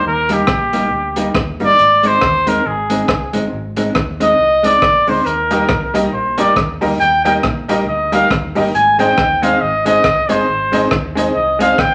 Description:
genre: ska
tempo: 138 BPM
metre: 4/4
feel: swing 58% on 8ths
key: unclear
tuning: A4 = 443 Hz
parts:
  - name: warm trumpet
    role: melody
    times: 0.0-11.9 s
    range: G4 to Ab5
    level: -16 LUFS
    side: equal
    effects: none
  - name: fingered electric bass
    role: bass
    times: 0.1-11.9 s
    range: G1 to Eb2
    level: -30 LUFS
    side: equal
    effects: none
  - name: vintage hollow-body jazz guitar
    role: accompaniment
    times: 0.3-11.7 s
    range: G3 to Eb4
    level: -23 LUFS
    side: equal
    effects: slapback echo
  - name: crunchy breakbeat drum kit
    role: drums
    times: 0.3-11.9 s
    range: hi-hat, kick drum, rim click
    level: -22 LUFS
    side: equal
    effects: none
  - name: bright upright piano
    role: stabs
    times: 5.5-11.7 s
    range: Eb4 to Eb5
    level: -22 LUFS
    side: equal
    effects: none
room: wet large studio reverb, RT60 0.8 s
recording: none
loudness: -15 LUFS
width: mono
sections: 0.0-11.9 A section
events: trumpet solo 0.0-11.9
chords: 0.0 Eb; 1.8 Ab; 5.3 Eb; 8.7 Ab

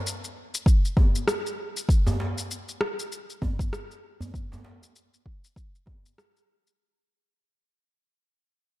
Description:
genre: downtempo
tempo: 98 BPM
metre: 4/4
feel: swing 57% on 16ths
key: none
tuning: none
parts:
  - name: electronic shaker and rim click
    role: drums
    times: 0.1-6.8 s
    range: none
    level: -30 LUFS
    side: left 1 dB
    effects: overdrive
  - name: electronic kick drum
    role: drums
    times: 0.7-6.0 s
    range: none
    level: -21 LUFS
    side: equal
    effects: overdrive
  - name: djembe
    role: percussion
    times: 1.0-6.0 s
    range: none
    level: -32 LUFS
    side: right 1 dB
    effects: none
room: light reverb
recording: dark, warm production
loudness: -24 LUFS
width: side -17 dB against mid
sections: 0.0-6.8 A section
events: fade-out 0.0-6.8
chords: none

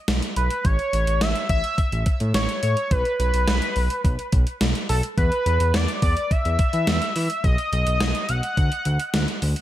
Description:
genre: synth-pop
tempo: 106 BPM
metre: 4/4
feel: straight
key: unclear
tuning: A4 = 440 Hz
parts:
  - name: smooth synth bass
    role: bass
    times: 0.1-9.5 s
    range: A1 to E3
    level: -22 LUFS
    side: equal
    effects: none
  - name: gated 80s digital drum machine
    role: drums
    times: 0.1-9.6 s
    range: hi-hat, kick drum, snare drum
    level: -23 LUFS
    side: equal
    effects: gated reverb, gated reverb snare
  - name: octave-doubled lead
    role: melody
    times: 0.4-9.4 s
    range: A4 to F#5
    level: -25 LUFS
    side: equal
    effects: chorus, digital delay
room: light reverb, digital ambience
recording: none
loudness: -19 LUFS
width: side -13 dB against mid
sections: 0.0-9.6 A section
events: none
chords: 0.0 N.C.; 0.6 A; 2.9 N.C.; 5.2 E5; 7.4 B; 8.6 D

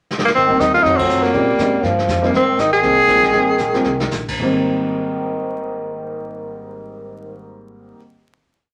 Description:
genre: jazz, small-group swing and bop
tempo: 209-244 BPM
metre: 4/4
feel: swing 59% on 8ths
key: Ab major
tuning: A4 = 441 Hz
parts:
  - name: vintage brush drum kit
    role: drums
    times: 0.1-4.3 s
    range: brushed snare drum, crash cymbal, hi-hat, kick drum, ride cymbal, snare drum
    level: -28 LUFS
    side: equal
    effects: none
  - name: breathy tenor saxophone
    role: melody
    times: 0.3-4.1 s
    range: Bb3 to Ab4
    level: -17 LUFS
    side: equal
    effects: none
  - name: trombone with cup mute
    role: second line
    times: 0.4-7.5 s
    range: Eb3 to G3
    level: -24 LUFS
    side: equal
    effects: none
  - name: upright bass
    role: bass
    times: 0.4-7.9 s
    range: Ab1 to Bb2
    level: -31 LUFS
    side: equal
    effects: none
  - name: warm concert grand piano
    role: accompaniment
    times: 0.5-8.0 s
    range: Ab2 to F4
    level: -25 LUFS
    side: equal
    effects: none
room: wet studio reverb, RT60 0.7 s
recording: vinyl crackle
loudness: -17 LUFS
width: mono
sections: 0.0-0.3 pickup bar; 0.3-4.4 A section; 4.4-6.7 final chord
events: drum fill 0.1, 3.9; band accent 1.0; slowing down 2.3-4.4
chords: 0.3 Abmaj7; 0.8 F7b9; 1.3 Bbm9; 1.8 Ebadd9; 2.3 Abmaj7

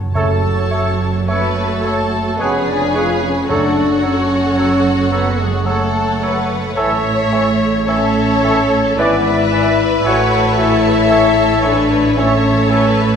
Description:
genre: classical, slow romantic movement for symphony orchestra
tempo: 55 BPM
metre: 3/4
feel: uneven beats, rubato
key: F# minor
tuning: A4 = 440 Hz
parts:
  - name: timpani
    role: percussion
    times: 0.0-5.1 s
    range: F#2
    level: -22 LUFS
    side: equal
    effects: none
  - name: warm oboe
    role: second line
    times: 0.1-12.9 s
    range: C#5 to D5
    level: -28 LUFS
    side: right 1 dB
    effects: none
  - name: warm symphonic violin section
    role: second line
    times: 0.1-13.2 s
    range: C#5 to A5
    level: -23 LUFS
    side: left 2 dB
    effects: none
  - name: mellow bassoon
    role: accompaniment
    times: 0.1-12.9 s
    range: E3 to A3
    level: -26 LUFS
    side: equal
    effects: none
  - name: dark trombone section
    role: sustained chords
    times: 0.1-10.5 s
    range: C#3 to B3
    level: -26 LUFS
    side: right 3 dB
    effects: none
  - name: warm symphonic cello section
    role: bass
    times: 0.1-13.2 s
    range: E#2 to A2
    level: -22 LUFS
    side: right 4 dB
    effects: none
  - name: bright clarinet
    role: second line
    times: 0.2-12.9 s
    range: A4 to B4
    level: -27 LUFS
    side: right 2 dB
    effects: none
  - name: warm chamber viola section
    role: accompaniment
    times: 0.2-13.2 s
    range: F#4 to C#5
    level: -22 LUFS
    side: right 1 dB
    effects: none
  - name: dark trumpet section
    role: stabs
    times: 0.2-10.5 s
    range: G#4 to D5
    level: -23 LUFS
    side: right 2 dB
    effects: none
  - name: rich symphonic double bass section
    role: bass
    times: 0.2-13.2 s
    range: E#1 to A1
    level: -22 LUFS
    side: right 3 dB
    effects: none
  - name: warm symphonic violin section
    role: melody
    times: 1.3-13.2 s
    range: F#4 to C#5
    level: -22 LUFS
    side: left 3 dB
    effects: none
  - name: silver concert flute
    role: second line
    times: 1.3-13.2 s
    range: G#4 to F#5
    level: -24 LUFS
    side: left 3 dB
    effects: none
  - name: dark French horn section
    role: sustained chords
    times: 1.3-13.2 s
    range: G#3 to F#4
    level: -18 LUFS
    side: left 3 dB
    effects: none
room: wet scoring stage reverb, RT60 1.6 s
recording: minimal, uncompressed stereo recording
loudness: -12 LUFS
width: side -7 dB against mid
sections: 0.1-13.2 A section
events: none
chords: 0.1 F#m; 2.4 C#7/E#; 3.5 F#m; 6.8 A; 9.0 E7/G#; 10.0 A

